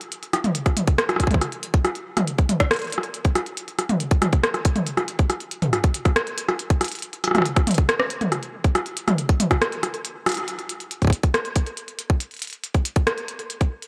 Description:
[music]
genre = IDM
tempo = 139 BPM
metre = 4/4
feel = straight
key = none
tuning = none
[part]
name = glitchy drum kit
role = drums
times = 0.0-13.9 s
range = hi-hat, rim click, toms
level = -25 LUFS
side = equal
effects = none
[part]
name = electronic kick drum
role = drums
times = 0.7-13.7 s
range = none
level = -21 LUFS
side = equal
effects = none
[sound]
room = light reverb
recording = dry, gritty hardware recording, transformer saturation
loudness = -23 LUFS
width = mono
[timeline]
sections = 0.0-10.5 A section; 10.5-13.9 B section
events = break 9.6-10.5; band accent 10.3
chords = none

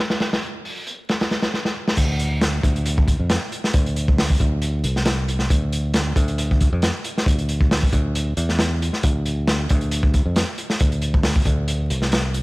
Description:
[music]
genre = breakbeat, breaks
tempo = 136 BPM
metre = 4/4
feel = swing 54% on 16ths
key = D minor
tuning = A4 = 440 Hz
[part]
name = crunchy breakbeat drum kit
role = drums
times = 0.1-12.4 s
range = crash cymbal, hi-hat, kick drum, snare drum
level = -20 LUFS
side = equal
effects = low-pass filter on kick, low-pass filter on hats, low-pass filter on cymbals, low-pass filter on snare, low-pass filter on room
[part]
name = fingered electric bass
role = bass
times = 2.0-12.4 s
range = C2 to F2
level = -22 LUFS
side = equal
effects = none
[sound]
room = little or no reverb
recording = vinyl crackle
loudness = -18 LUFS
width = side -22 dB against mid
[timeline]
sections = 0.0-2.0 A section; 2.0-12.4 B section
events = drum fill 1.5-2.0; drop 2.0-12.4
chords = none

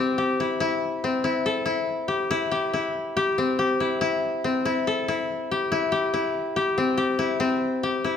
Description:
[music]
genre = rock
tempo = 141 BPM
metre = 4/4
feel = straight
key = C major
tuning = A4 = 437 Hz
[part]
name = koto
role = solo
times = 0.0-8.2 s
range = C4 to A4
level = -22 LUFS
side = left 3 dB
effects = none
[sound]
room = wet recital hall reverb, RT60 1.5 s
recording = recorded in a church or concert hall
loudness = -22 LUFS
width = side -8 dB against mid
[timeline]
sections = 0.0-7.4 A section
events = none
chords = 0.0 C; 0.6 C6; 7.4 C

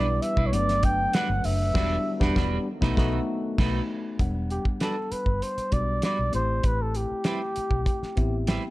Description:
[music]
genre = lush 1970s-style soul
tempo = 98 BPM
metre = 4/4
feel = straight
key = E minor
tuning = A4 = 440 Hz
[part]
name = breathy flugelhorn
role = melody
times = 0.0-8.7 s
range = G4 to G5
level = -28 LUFS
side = equal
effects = none
[part]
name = mellow tine electric piano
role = accompaniment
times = 0.0-8.7 s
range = F#3 to G5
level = -31 LUFS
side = left 3 dB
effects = overdrive
[part]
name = mellow French horn section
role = sustained chords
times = 0.0-4.2 s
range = B2 to B4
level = -39 LUFS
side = right 2 dB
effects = none
[part]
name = clean electric guitar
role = riff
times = 0.0-8.6 s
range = G3 to B4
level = -32 LUFS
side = right 4 dB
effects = lush chorus
[part]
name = vintage muted fingered electric bass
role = bass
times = 0.0-8.6 s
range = E1 to B1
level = -28 LUFS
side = equal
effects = none
[part]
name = cloth-damped thuddy drum kit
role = drums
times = 0.2-8.6 s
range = crash cymbal, hi-hat, kick drum, snare drum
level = -27 LUFS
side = equal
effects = none
[sound]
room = light reverb, studio ambience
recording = dark, warm production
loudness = -23 LUFS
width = side -18 dB against mid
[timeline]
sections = 0.0-4.2 A section; 4.2-8.7 B section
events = band accent 1.8-4.2; tine electric piano fill 7.9-8.7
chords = 0.0 Cmaj9 (rootless); 0.5 Gmaj7; 1.8 Em9; 2.7 B7; 4.2 Em9; 6.3 Am9

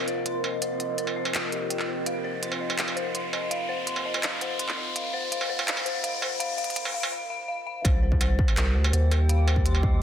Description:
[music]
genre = half-time drum and bass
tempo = 166 BPM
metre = 4/4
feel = half-time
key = C minor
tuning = A4 = 437 Hz
[part]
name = deep dark ambient pad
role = sustained chords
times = 0.0-7.1 s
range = C4 to Eb5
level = -33 LUFS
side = equal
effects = chorus, built-in reverb, sidechain pumping
[part]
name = dark detuned synth bell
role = arpeggios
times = 0.0-10.0 s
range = G4 to C6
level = -32 LUFS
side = left 3 dB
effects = chorus, phaser, ping-pong delay
[part]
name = riser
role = sound effects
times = 0.1-7.1 s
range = none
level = -34 LUFS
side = left 1 dB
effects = none
[part]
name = industrial drum kit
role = drums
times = 0.1-9.8 s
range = handclaps, hi-hat, struck metal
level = -30 LUFS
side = right 2 dB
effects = soft clipping on snare
[part]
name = saturated sub bass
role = bass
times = 7.8-10.0 s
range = C2 to Eb2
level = -22 LUFS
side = equal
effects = none
[part]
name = electronic kick drum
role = drums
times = 7.8-9.9 s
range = none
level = -24 LUFS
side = equal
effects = distortion
[part]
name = metallic inharmonic drone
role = texture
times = 8.2-10.0 s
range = G3 to G4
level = -36 LUFS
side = right 2 dB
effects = chorus, built-in reverb, phaser
[sound]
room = light reverb, digital ambience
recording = dense, heavily limited modern master, high-pass filter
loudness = -24 LUFS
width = side -10 dB against mid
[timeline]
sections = 0.0-7.8 A section; 7.8-10.0 B section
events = build-up 0.0-7.8; filter sweep 0.0-7.8; riser 0.1-7.1; break 7.1-7.8; drop 7.8-10.0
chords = 0.0 Cm

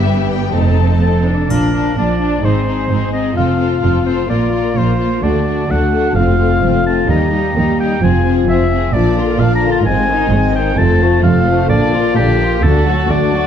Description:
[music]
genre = cinematic, heroic adventure film score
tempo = 129 BPM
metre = 4/4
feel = straight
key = unclear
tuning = A4 = 440 Hz
[part]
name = rich symphonic violin section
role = melody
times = 0.0-13.5 s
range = F4 to A5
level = -27 LUFS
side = left 6 dB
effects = none
[part]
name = warm symphonic violin section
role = second line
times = 0.0-13.5 s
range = A3 to B4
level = -22 LUFS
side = left 5 dB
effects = none
[part]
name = warm symphonic viola section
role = accompaniment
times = 0.0-13.5 s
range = D3 to D4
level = -21 LUFS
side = equal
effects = none
[part]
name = rich symphonic cello section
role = bass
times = 0.0-13.5 s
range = D2 to Bb2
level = -19 LUFS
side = right 3 dB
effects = none
[part]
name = warm symphonic double bass section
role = bass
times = 0.0-13.5 s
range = F1 to Eb2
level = -17 LUFS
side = right 2 dB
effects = none
[part]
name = clear oboe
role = second line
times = 1.0-13.5 s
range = G4 to Bb5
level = -20 LUFS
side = equal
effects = none
[part]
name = mellow French horn section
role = sustained chords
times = 1.5-13.5 s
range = F3 to G4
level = -19 LUFS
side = left 8 dB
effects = none
[part]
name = triangle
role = percussion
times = 1.5-2.4 s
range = none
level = -37 LUFS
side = right 1 dB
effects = none
[sound]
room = moderate scoring stage reverb, RT60 1.4 s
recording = dark, warm production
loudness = -12 LUFS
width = side -8 dB against mid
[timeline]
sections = 0.0-1.5 A section; 1.5-13.5 B section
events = none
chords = 0.0 Em/G; 0.5 F7; 1.5 Bb; 2.4 Ab; 3.4 F; 4.3 Bb; 5.2 D; 6.2 F; 7.1 Eb; 8.0 Fm; 8.9 Bb; 9.9 Ab; 10.8 F; 11.7 Bb; 12.6 D

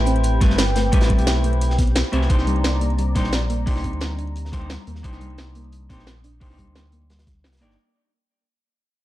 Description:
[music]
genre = liquid drum and bass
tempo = 175 BPM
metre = 4/4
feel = straight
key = unclear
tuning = A4 = 440 Hz
[part]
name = vintage hollow-body jazz guitar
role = accompaniment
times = 0.0-7.8 s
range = A3 to D5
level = -29 LUFS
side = equal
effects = digital delay
[part]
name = warm analog pad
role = sustained chords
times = 0.0-7.8 s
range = G3 to Eb6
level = -28 LUFS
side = left 1 dB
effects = chorus, sidechain pumping
[part]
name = sub bass with octave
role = bass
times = 0.0-7.8 s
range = G1 to Eb2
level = -22 LUFS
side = equal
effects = none
[part]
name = thumb-piano-like synth pluck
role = arpeggios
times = 0.1-7.8 s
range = G3 to D4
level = -30 LUFS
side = right 1 dB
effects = chorus, dub echo
[part]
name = crunchy breakbeat drum kit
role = drums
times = 0.1-7.8 s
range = hi-hat, snare drum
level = -34 LUFS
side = equal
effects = high-pass filter on hats, high-pass filter on snare, high-pass filter on room
[part]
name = drum and bass drum kit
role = drums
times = 0.1-7.7 s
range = hi-hat, snare drum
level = -26 LUFS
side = equal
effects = low-pass filter on hats, low-pass filter on snare, low-pass filter on room
[part]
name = electronic kick drum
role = drums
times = 0.4-7.3 s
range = none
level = -20 LUFS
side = equal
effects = none
[sound]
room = light reverb, digital ambience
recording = dark, warm production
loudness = -18 LUFS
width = side -15 dB against mid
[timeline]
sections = 0.0-7.8 A section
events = fade-out 0.0-7.8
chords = 0.0 Am9; 2.3 Cm9

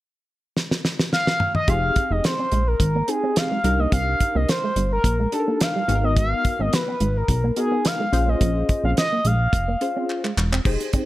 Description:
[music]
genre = early-eighties boogie funk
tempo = 107 BPM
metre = 4/4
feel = straight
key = F minor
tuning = A4 = 440 Hz
[part]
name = damped 70s drum kit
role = drums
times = 0.6-11.1 s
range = crash cymbal, handclaps, hi-hat, kick drum, snare drum, toms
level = -22 LUFS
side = equal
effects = gated reverb
[part]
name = expressive synth lead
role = melody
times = 1.1-10.4 s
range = Ab4 to F5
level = -24 LUFS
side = equal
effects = chorus
[part]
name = funky polysynth comp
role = accompaniment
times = 1.7-11.1 s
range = Cb4 to C5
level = -27 LUFS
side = left 2 dB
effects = chorus
[part]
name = electric guitar with an envelope filter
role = riff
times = 1.7-11.0 s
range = G3 to F4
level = -30 LUFS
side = right 3 dB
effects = ensemble chorus
[part]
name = chorused synth bass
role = bass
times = 1.7-10.8 s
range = E1 to C2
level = -21 LUFS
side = equal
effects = none
[sound]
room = small room ambience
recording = none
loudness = -19 LUFS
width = side -16 dB against mid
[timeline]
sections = 0.0-1.7 A section; 1.7-10.7 B section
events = drum fill 0.6-1.7, 10.1-10.7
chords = 0.0 N.C.; 1.7 Fm9; 3.6 Cm9; 5.9 Abm9; 8.1 Bbm9

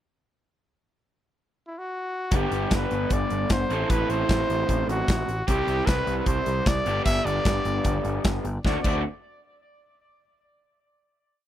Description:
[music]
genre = indie rock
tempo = 152 BPM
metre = 4/4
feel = straight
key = D mixolydian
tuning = A4 = 441 Hz
[part]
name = warm trumpet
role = melody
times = 1.7-9.0 s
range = E4 to E5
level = -28 LUFS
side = left 1 dB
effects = none
[part]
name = raw garage guitar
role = riff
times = 2.3-9.0 s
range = G2 to A4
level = -28 LUFS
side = right 1 dB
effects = overdrive
[part]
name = overdriven picked electric bass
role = bass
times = 2.3-9.0 s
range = G1 to D2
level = -29 LUFS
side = equal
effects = none
[part]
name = big rock drum kit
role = drums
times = 2.3-8.9 s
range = crash cymbal, hi-hat, kick drum, snare drum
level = -25 LUFS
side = equal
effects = none
[sound]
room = small room ambience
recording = dry, close 1970s-style studio recording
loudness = -22 LUFS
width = side -11 dB against mid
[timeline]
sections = 0.8-2.3 pickup bar; 2.3-8.6 pre-chorus; 8.6-10.2 final chord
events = none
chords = 0.8 N.C.; 2.3 G; 3.7 Am; 5.5 C; 6.9 G; 8.6 D7

